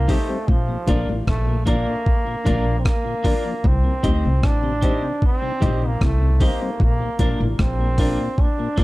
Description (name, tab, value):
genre	roots reggae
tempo	76 BPM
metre	4/4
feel	straight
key	unclear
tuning	A4 = 440 Hz
part	bright trombone	melody	0.0-8.8 s	F3 to D4	-26 LUFS	right 1 dB	tape echo
part	upright bass	bass	0.0-8.8 s	A1 to D2	-21 LUFS	equal	none
part	clean electric guitar	accompaniment	0.1-8.8 s	Bb3 to C5	-32 LUFS	right 1 dB	tape echo
part	mellow tonewheel organ	accompaniment	0.1-8.8 s	Bb2 to D4	-29 LUFS	left 2 dB	slow rotary speaker, tape echo
part	clear concert grand piano	stabs	0.1-8.8 s	D4 to Eb5	-30 LUFS	left 3 dB	none
part	breakbeat sampler-style drum kit	drums	0.1-8.8 s	hi-hat, kick drum, rim click	-20 LUFS	equal	none
room	small room reverb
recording	dark, warm production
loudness	-18 LUFS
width	side -19 dB against mid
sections	0.0-8.8 A section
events	none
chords	0.5 Bb; 3.6 Cm; 6.8 Bb